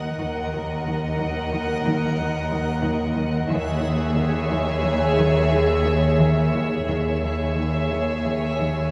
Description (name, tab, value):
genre	cinematic, suspense film score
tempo	90 BPM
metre	5/4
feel	straight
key	unclear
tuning	A4 = 442 Hz
part	rich studio violin section	melody	0.0-8.9 s	Fb5 to Gb5	-34 LUFS	equal	none
part	rich studio violin section	second line	0.0-8.9 s	Ab4 to Eb5	-30 LUFS	equal	none
part	backwards swelling texture	sustained chords	0.0-8.9 s	Ab4 to Gb5	-31 LUFS	equal	built-in reverb
part	rich studio cello section	riff	0.0-8.8 s	Eb3	-30 LUFS	equal	none
part	rich studio cello section	bass	0.0-8.9 s	Eb2	-28 LUFS	equal	none
part	rich studio double bass section	bass	0.0-8.9 s	Eb2	-30 LUFS	equal	none
room	wet scoring stage reverb, RT60 1.5 s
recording	heard from further back in the room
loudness	-22 LUFS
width	mono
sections	0.0-8.9 A section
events	none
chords	0.0 Ebm; 3.5 Dbm/Eb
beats	| 0.21 0.87 1.53 2.19 2.85 | 3.51 4.17 4.84 5.51 6.19 | 6.87 7.56 8.25